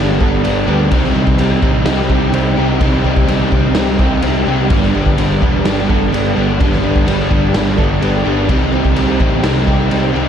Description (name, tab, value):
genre	rock, shoegaze and dream pop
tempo	127 BPM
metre	4/4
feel	straight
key	unclear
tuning	A4 = 441 Hz
part	direct-recorded clean electric guitar	arpeggios	0.0-10.3 s	G3 to A4	-24 LUFS	right 11 dB	ensemble chorus, tape echo
part	crunchy overdriven guitar	riff	0.0-10.3 s	G2 to G4	-19 LUFS	left 10 dB	ensemble chorus
part	crunchy overdriven guitar	riff	0.0-10.3 s	G2 to C4	-20 LUFS	equal	none
part	overdriven electric guitar	riff	0.0-10.3 s	G2 to Eb4	-20 LUFS	right 10 dB	reverse reverb
part	modern bright picked electric bass	bass	0.0-10.3 s	E1 to D2	-19 LUFS	equal	none
part	raw garage drum kit	drums	0.2-10.0 s	crash cymbal, kick drum, snare drum	-17 LUFS	equal	none
room	light reverb, small room ambience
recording	none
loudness	-11 LUFS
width	side -8 dB against mid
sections	0.0-10.3 A section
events	none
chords	0.0 Gadd9; 0.9 Cm; 4.7 Gadd9; 8.5 Cm